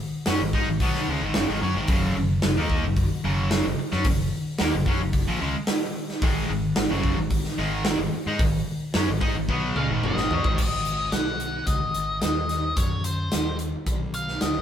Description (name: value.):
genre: classic rock.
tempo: 110 BPM.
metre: 4/4.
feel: straight.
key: unclear.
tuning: A4 = 441 Hz.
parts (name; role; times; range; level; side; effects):
cranked stack guitar; riff; 0.3-10.6 s; Gb2 to Eb4; -26 LUFS; equal; overdrive.
fuzz fingered electric bass; bass; 0.3-14.6 s; Gb1 to Ab2; -29 LUFS; equal; overdrive.
big rock drum kit; drums; 0.3-14.5 s; crash cymbal, hi-hat, kick drum, snare drum, toms; -25 LUFS; equal; none.
octave-fuzz lead guitar; melody; 9.8-14.6 s; C5 to F#5; -28 LUFS; left 3 dB; distortion.
room: light reverb.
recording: band playing live in one room.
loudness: -22 LUFS.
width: side -9 dB against mid.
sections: 0.0-10.6 A section; 10.6-14.6 B section.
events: drum fill 9.5-10.6.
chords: 0.0 Ab5; 1.9 Gb5; 6.2 Ab5; 11.1 B5; 11.7 Ab5; 12.2 N.C.; 12.8 Gb5; 13.3 Ab (rootless); 13.9 N.C..